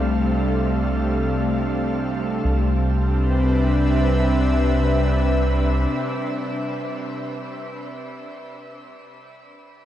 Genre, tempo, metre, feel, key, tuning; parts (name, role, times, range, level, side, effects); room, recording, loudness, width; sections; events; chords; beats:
ambient; free time; C major; A4 = 438 Hz
airy breathy pad; sustained chords; 0.0-7.8 s; C3 to F5; -23 LUFS; equal; chorus
round analog bass; bass; 0.0-5.9 s; C2; -22 LUFS; equal
bowed-like drone; drone; 0.0-7.3 s; C3 to G3; -27 LUFS; left 1 dB; built-in reverb
wet shimmer reverb, RT60 7.8 s; dark, warm production; -19 LUFS; side -12 dB against mid
0.0-2.4 A section; 2.4-7.1 B section
0.0 F69/C; 2.4 Cmaj7
free time